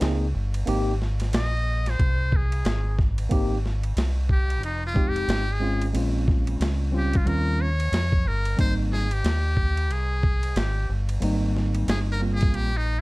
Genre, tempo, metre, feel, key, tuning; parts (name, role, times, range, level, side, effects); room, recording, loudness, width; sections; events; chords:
hip hop, jazz-hop; 91 BPM; 4/4; swing 61% on 16ths; Ab major; A4 = 436 Hz
tine electric piano; accompaniment; 0.0-12.7 s; G3 to Ab4; -27 LUFS; equal; medium stereo tremolo
deep dub fingered electric bass; bass; 0.0-13.0 s; F1 to F2; -24 LUFS; equal
boom bap sampler-style drum kit; drums; 0.0-12.7 s; hi-hat, kick drum, ride cymbal, snare drum; -27 LUFS; equal
trumpet with metal mute; melody; 1.4-13.0 s; Eb4 to Eb5; -29 LUFS; equal; slapback echo
little or no reverb; dark, warm production, vinyl crackle; -22 LUFS; side -22 dB against mid
0.0-3.3 A section; 3.3-13.0 B section
muted trumpet solo 3.3-13.0
0.0 Abmaj9; 3.3 Abmaj7; 4.6 Fm7; 5.9 Bbm9; 7.3 Eb13; 8.6 Abmaj7